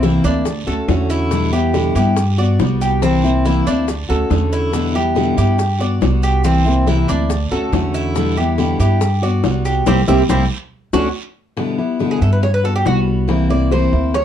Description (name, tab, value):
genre	latin, Cuban son and guajira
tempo	140 BPM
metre	4/4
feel	straight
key	unclear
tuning	A4 = 440 Hz
part	picked steel-string acoustic guitar	accompaniment	0.0-14.2 s	B2 to F#4	-18 LUFS	left 2 dB	none
part	Cuban tres	arpeggios	0.0-14.2 s	C4 to D5	-21 LUFS	right 2 dB	none
part	upright bass	bass	0.0-14.2 s	C2 to G2	-17 LUFS	right 1 dB	none
part	bongos	percussion	0.0-14.2 s	none	-24 LUFS	left 6 dB	none
part	guiro	percussion	0.0-11.0 s	none	-34 LUFS	right 7 dB	none
part	maracas	percussion	0.0-11.0 s	none	-38 LUFS	left 6 dB	none
room	light reverb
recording	dark, warm production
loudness	-14 LUFS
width	side -10 dB against mid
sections	0.0-11.6 A section; 11.6-14.2 B section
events	band accent 9.9-11.6; drum fill 10.7-11.6; Cuban tres solo 11.6-14.2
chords	0.5 Dmaj7; 1.3 Em7; 2.2 Gmaj7; 3.0 C7; 3.9 Dmaj7; 4.7 Em7; 5.6 Gmaj7; 6.4 C7; 7.3 Dmaj7; 8.2 Em7; 9.0 Gmaj7; 9.9 C7; 10.7 Dmaj7; 11.6 Em7; 12.4 Gmaj7; 13.3 C7